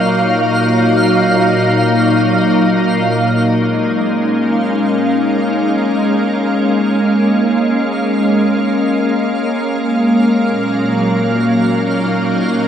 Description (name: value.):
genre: ambient.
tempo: free time.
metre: none.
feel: none.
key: Bb minor.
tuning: A4 = 439 Hz.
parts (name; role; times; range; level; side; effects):
soft additive organ-like pad; sustained chords; 0.0-12.7 s; Bb2 to F5; -12 LUFS; equal; ensemble chorus, built-in reverb.
twinkling granular texture; texture; 0.0-12.7 s; F5; -22 LUFS; right 1 dB; built-in reverb.
room: wet huge ambient reverb, RT60 7.5 s.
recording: dark, warm production.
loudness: -12 LUFS.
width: side -8 dB against mid.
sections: 0.0-3.5 A section; 3.5-12.7 B section.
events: fade-in on synth texture 3.5-12.7.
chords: 0.0 Ebmadd9/Bb; 3.5 Bbm7; 10.4 Ebmadd9/Bb.